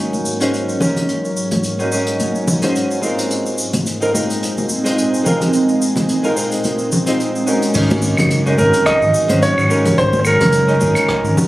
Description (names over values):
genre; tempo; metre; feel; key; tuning
sunset chillout; 108 BPM; 4/4; swing 55% on 16ths; Ab mixolydian; A4 = 440 Hz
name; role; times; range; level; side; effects
flamenco guitar; accompaniment; 0.0-11.5 s; Ab3 to C5; -19 LUFS; equal; auto-pan, digital delay
ethereal airy pad; sustained chords; 0.0-11.5 s; Ab2 to Eb4; -22 LUFS; equal; ensemble chorus, built-in reverb, phaser
jazz brush drum kit; drums; 0.1-11.5 s; cabasa, claves, crash cymbal, hi-hat, rim click; -23 LUFS; equal; none
congas; percussion; 0.1-11.5 s; none; -21 LUFS; equal; none
fingered electric bass; bass; 7.8-11.3 s; Gb1 to Ab1; -18 LUFS; equal; none
electronic kick drum; drums; 7.8-11.2 s; none; -28 LUFS; equal; none
clear concert grand piano; melody; 8.6-11.3 s; Bb4 to Eb5; -16 LUFS; right 1 dB; tape echo
room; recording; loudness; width
moderate plate reverb, RT60 2.3 s; recorded on a phone in the room, club reverb; -14 LUFS; side -16 dB against mid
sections
0.0-7.8 A section; 7.8-11.5 B section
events
filter sweep on ambient pad 0.0-7.8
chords
0.0 Ab9sus4; 3.3 Bb9sus4; 7.8 Ab9sus4